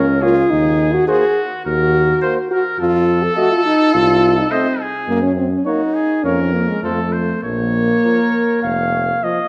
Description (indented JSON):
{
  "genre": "classical, brass quintet",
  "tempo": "104 BPM",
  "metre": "4/4",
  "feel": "uneven beats",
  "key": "Bb minor",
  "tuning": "A4 = 440 Hz",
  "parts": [
    { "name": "clear trumpet", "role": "melody", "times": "0.0-9.5 s", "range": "Gb4 to Db5", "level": "-24 LUFS", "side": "equal", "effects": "none" },
    { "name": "warm flugelhorn", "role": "second line", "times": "0.0-9.5 s", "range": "Bb4 to F5", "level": "-26 LUFS", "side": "equal", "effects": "none" },
    { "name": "mellow French horn", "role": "accompaniment", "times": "0.0-9.5 s", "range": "Ab3 to A4", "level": "-19 LUFS", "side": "equal", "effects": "none" },
    { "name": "mellow trombone", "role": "accompaniment", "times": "0.0-9.4 s", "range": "F3 to Bb3", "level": "-29 LUFS", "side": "equal", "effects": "none" },
    { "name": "warm tuba", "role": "bass", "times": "0.0-9.1 s", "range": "F1 to Gb2", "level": "-24 LUFS", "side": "equal", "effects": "none" }
  ],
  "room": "moderate scoring stage reverb, RT60 1.7 s",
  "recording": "none",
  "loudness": "-16 LUFS",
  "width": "mono",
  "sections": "0.0-9.5 A section",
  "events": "none",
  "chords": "0.0 Bbm/Db; 0.5 Cm7b5/Eb (rootless); 2.8 F7; 5.1 Gb; 6.2 Bbm/F; 6.8 F; 7.4 Bbm"
}